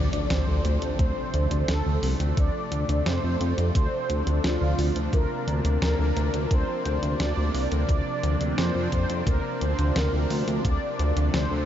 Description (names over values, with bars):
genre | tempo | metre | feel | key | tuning
synthwave | 87 BPM | 4/4 | straight | D minor | A4 = 440 Hz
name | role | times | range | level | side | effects
mellow synth brass | melody | 0.0-11.7 s | F4 to D5 | -30 LUFS | equal | chorus, diffuse ambient delay
lush unison pad | sustained chords | 0.0-11.7 s | C3 to D4 | -31 LUFS | equal | chorus, phaser, sidechain pumping
chorused synth bass | bass | 0.0-11.6 s | C2 to F2 | -25 LUFS | equal | sidechain pumping
impact | sound effects | 0.0-2.4 s | none | -34 LUFS | equal | none
clean 12-bit digital drum machine | drums | 0.1-11.5 s | hi-hat, snare drum | -34 LUFS | equal | none
electronic kick drum | drums | 1.0-10.8 s | none | -24 LUFS | equal | none
room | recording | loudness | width
moderate huge ambient reverb, RT60 7.8 s | dreamy mix soaked in reverb, nothing above 7.7 kHz | -22 LUFS | side -10 dB against mid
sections
0.0-11.7 A section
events
impact 0.0-2.4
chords
0.0 Dm7; 5.1 Bbadd9; 10.6 Dm7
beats
0.30 0.99 1.68 | 2.37 3.06 3.75 4.44 | 5.13 5.82 6.51 7.20 | 7.89 8.58 9.27 9.96 | 10.65 11.34